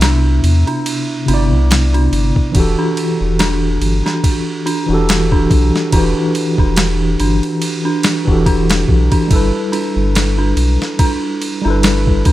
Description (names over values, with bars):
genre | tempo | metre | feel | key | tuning
trip hop | 71 BPM | 4/4 | swing 56% on 16ths | E minor | A4 = 440 Hz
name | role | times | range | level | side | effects
mellow tine electric piano | accompaniment | 0.0-12.3 s | C3 to E5 | -18 LUFS | equal | medium stereo tremolo, harmonic tremolo, vintage 12-bit sampler grit, tape echo
dark detuned synth bell | arpeggios | 0.0-12.3 s | D4 | -21 LUFS | right 2 dB | chorus, tape echo
warm sub bass | bass | 0.0-12.3 s | E1 to E2 | -15 LUFS | equal | none
boom bap sampler-style drum kit | drums | 0.0-12.3 s | kick drum, ride cymbal, snare drum | -17 LUFS | equal | none
room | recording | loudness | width
little or no reverb | none | -12 LUFS | side -15 dB against mid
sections
0.0-12.3 A section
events
none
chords
0.0 Cmaj9; 2.6 Em11; 9.3 G69